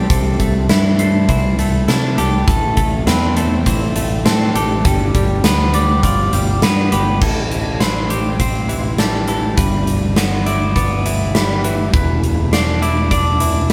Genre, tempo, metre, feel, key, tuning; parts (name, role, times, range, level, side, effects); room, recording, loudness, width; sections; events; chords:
post-rock; 102 BPM; 4/4; straight; A minor; A4 = 439 Hz
clean electric guitar; arpeggios; 0.0-13.7 s; A4 to D5; -26 LUFS; equal; spring reverb
twelve-string electric guitar; arpeggios; 0.0-13.7 s; E2 to G4; -24 LUFS; equal
growling fingered electric bass; bass; 0.0-13.7 s; E1 to C3; -20 LUFS; equal; overdrive
huge arena drum kit; drums; 0.1-13.7 s; crash cymbal, hi-hat, kick drum, snare drum; -20 LUFS; equal
wet studio reverb, RT60 0.6 s; band playing live in one room; -16 LUFS; mono
0.0-7.2 A section; 7.2-13.7 B section
0.1 C6; 2.5 Am7; 4.8 G7; 7.2 Am7; 9.6 G6; 11.9 E7(no3)